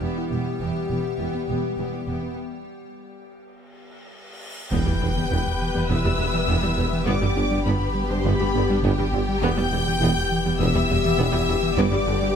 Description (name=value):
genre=cinematic, hybrid orchestral and electronic film score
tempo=102 BPM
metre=4/4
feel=straight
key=E minor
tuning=A4 = 440 Hz
part: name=warm symphonic violin section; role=melody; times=0.0-12.4 s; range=E5 to G6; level=-30 LUFS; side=left 4 dB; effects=none
part: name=rich symphonic violin section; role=second line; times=0.0-12.4 s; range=G4 to G5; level=-32 LUFS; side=left 3 dB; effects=none
part: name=warm symphonic viola section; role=accompaniment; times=0.0-12.4 s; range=D3 to B4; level=-30 LUFS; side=right 1 dB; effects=none
part: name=icy glass pad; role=sustained chords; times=0.0-12.4 s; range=G3 to G5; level=-33 LUFS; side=left 2 dB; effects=chorus, built-in reverb
part: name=mellow French horn section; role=sustained chords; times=0.0-12.4 s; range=B3 to G4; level=-31 LUFS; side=left 6 dB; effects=none
part: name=glassy wavetable pluck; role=arpeggios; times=0.0-12.3 s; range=E3 to G4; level=-33 LUFS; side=right 1 dB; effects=chorus, ping-pong delay
part: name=clear symphonic cello section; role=bass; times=0.0-12.3 s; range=E2 to G2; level=-29 LUFS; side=right 2 dB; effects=none
part: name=rich symphonic double bass section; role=bass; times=0.0-12.1 s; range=E1 to G1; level=-29 LUFS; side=right 2 dB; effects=none
part: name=cymbal swell and impact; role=sound effects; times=4.1-7.1 s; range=none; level=-34 LUFS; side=left 1 dB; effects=none
part: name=round analog bass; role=riff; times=4.7-12.3 s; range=E2 to G3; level=-28 LUFS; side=right 1 dB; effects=none
part: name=punchy sub bass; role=bass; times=4.7-12.4 s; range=E1 to G1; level=-30 LUFS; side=left 1 dB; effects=none
part: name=warm tuba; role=bass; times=4.7-12.1 s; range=E1 to G1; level=-31 LUFS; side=right 4 dB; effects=none
room=moderate scoring stage reverb, RT60 1.4 s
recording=none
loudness=-20 LUFS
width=side -8 dB against mid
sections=0.0-4.7 A section; 4.7-12.4 B section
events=break 2.4-4.7; cymbal swell 4.1-4.7; impact 4.7-7.1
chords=0.0 Em; 2.4 N.C.; 4.7 Em; 7.1 G; 9.4 Em; 11.8 G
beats=| 0.01 0.60 1.19 1.78 | 2.37 2.95 3.54 4.13 | 4.72 5.31 5.89 6.48 | 7.07 7.66 8.25 8.84 | 9.43 10.01 10.60 11.19 | 11.78